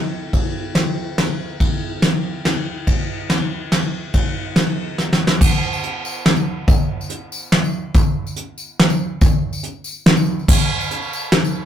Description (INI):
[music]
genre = folk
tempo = 142 BPM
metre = 3/4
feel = straight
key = none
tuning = none
[part]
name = soft brush drum kit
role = drums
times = 0.3-11.4 s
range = crash cymbal, hi-hat, kick drum, ride cymbal, snare drum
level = -16 LUFS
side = equal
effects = none
[part]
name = tambourine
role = percussion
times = 5.4-11.6 s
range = none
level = -32 LUFS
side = left 4 dB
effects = none
[sound]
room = moderate small room ambience, RT60 0.5 s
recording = rough rehearsal-room recording, tube saturation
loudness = -16 LUFS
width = side -10 dB against mid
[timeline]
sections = 0.0-5.4 A section; 5.4-10.5 B section; 10.5-11.7 C section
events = drum fill 5.0-5.4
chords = none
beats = | 0.33 0.75 1.18 | 1.60 2.03 2.45 | 2.87 3.30 3.72 | 4.15 4.57 4.99 | 5.42 5.84 6.26 | 6.68 7.11 7.53 | 7.95 8.37 8.79 | 9.22 9.64 10.06 | 10.48 10.91 11.33